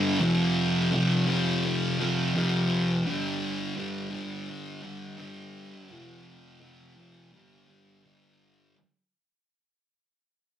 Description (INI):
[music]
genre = rock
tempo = 84 BPM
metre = 4/4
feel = straight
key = unclear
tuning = A4 = 440 Hz
[part]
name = thick fuzz guitar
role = solo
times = 0.0-8.7 s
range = F2 to G3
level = -25 LUFS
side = equal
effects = distortion
[sound]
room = wet studio reverb, RT60 0.6 s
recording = rough rehearsal-room recording, tube saturation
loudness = -24 LUFS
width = side -10 dB against mid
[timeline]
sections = 0.0-8.8 A section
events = fade-out 0.0-8.8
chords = 0.2 F5; 3.1 G5; 5.9 F5; 7.3 G5